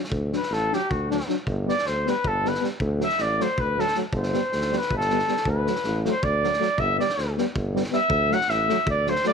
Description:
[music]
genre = balkan folk, Balkan brass band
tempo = 316 BPM (eighths)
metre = 7/8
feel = straight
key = D mixolydian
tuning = A4 = 437 Hz
[part]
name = loose indie drum kit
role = percussion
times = 0.0-9.3 s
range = kick drum, snare drum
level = -32 LUFS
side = equal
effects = none
[part]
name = warm tuba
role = bass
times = 0.1-9.2 s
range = G1 to D2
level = -28 LUFS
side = equal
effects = none
[part]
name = dark euphonium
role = accompaniment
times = 0.3-9.3 s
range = A3 to D4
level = -29 LUFS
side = left 14 dB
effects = none
[part]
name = warm trombone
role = accompaniment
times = 0.3-9.3 s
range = F#3 to G3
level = -31 LUFS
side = right 16 dB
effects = none
[part]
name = mellow trumpet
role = melody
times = 0.4-9.3 s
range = D4 to F#5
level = -24 LUFS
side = equal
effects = none
[sound]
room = light reverb, small room ambience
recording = 1960s-style stereo with parts hard left and right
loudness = -21 LUFS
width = side -6 dB against mid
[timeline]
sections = 0.1-9.3 A section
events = trumpet solo 0.1-9.3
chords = 0.1 D; 1.5 G; 2.8 D; 4.1 G; 5.5 D; 6.8 G; 8.1 D

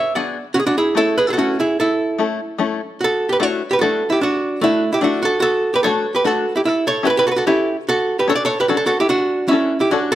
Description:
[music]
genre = musette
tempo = 148 BPM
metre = 3/4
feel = straight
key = D major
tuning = A4 = 439 Hz
[part]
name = archtop guitar, miked and amplified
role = melody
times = 0.0-10.2 s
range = A3 to F#5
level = -16 LUFS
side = right 1 dB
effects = none
[part]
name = open-back banjo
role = accompaniment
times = 0.2-10.1 s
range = A3 to A4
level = -22 LUFS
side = left 6 dB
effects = none
[sound]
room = moderate recital hall reverb, RT60 1.5 s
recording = close, detailed microphones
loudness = -15 LUFS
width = side -13 dB against mid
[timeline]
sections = 0.0-3.0 A section; 3.0-10.2 B section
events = none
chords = 0.0 G#m7b5; 0.5 A; 3.0 D/A; 6.6 A7; 7.9 Dmaj7

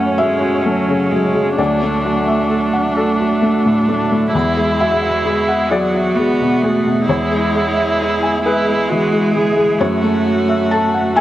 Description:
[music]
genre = neoclassical piano and strings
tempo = 44 BPM (dotted quarters)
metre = 6/8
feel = rubato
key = F# minor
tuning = A4 = 440 Hz
[part]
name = rich cello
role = second line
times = 0.0-11.2 s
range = F#3 to B3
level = -19 LUFS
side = right 3 dB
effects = none
[part]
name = felt-muted upright piano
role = accompaniment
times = 0.0-11.2 s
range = D2 to A5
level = -17 LUFS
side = left 2 dB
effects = none
[part]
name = warm viola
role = accompaniment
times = 0.0-11.2 s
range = C#4 to G#4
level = -20 LUFS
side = right 1 dB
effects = none
[part]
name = warbly tape-like pad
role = sustained chords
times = 0.1-11.2 s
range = F#3 to E5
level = -25 LUFS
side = equal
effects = chorus, built-in reverb
[sound]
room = moderate spring reverb, RT60 2.6 s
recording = cassette tape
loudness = -13 LUFS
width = side -14 dB against mid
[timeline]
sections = 0.0-11.2 A section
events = none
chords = 0.0 F#m7; 1.6 Dadd9; 4.3 Eadd9; 7.1 C#m/E; 9.8 F#m7

